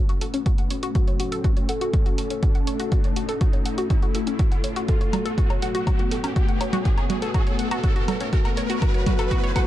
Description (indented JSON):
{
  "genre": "melodic techno",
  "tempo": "122 BPM",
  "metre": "4/4",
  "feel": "straight",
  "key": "F# minor",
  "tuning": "A4 = 439 Hz",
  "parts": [
    { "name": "dark analog pad", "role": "sustained chords", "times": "0.1-9.7 s", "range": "A3 to A4", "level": "-30 LUFS", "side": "left 3 dB", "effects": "chorus, phaser, sidechain pumping" },
    { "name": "analog pluck", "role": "arpeggios", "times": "0.0-9.7 s", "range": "C#4 to F#5", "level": "-30 LUFS", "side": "left 1 dB", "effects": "chorus, sidechain pumping, tape echo" },
    { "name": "riser", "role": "sound effects", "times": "0.1-9.7 s", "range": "none", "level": "-33 LUFS", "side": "right 1 dB", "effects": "none" },
    { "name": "electronic hi-hat, congas and woodblock", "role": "drums", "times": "0.1-9.7 s", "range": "none", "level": "-30 LUFS", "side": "right 2 dB", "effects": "none" },
    { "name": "electronic kick drum", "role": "drums", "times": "0.5-9.7 s", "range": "none", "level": "-21 LUFS", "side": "equal", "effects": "none" },
    { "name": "soft octave-layered synth lead", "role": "melody", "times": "0.9-9.7 s", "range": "F#4 to A4", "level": "-32 LUFS", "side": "left 1 dB", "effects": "chorus, sidechain pumping, ping-pong delay" }
  ],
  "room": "little or no reverb",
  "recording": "dark, warm production",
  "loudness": "-20 LUFS",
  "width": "side -13 dB against mid",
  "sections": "0.0-9.7 A section",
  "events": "build-up 0.0-9.7; filter sweep on synth arpeggio sound 0.0-9.7; filter sweep on soft synth lead 0.0-9.7; riser 0.1-9.7; drum fill 4.9-9.7",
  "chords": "0.0 F#m",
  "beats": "0.46 | 0.95 1.44 1.94 2.43 | 2.92 3.41 3.90 4.39 | 4.89 5.38 5.87 6.36 | 6.85 7.34 7.84 8.33 | 8.82 9.31"
}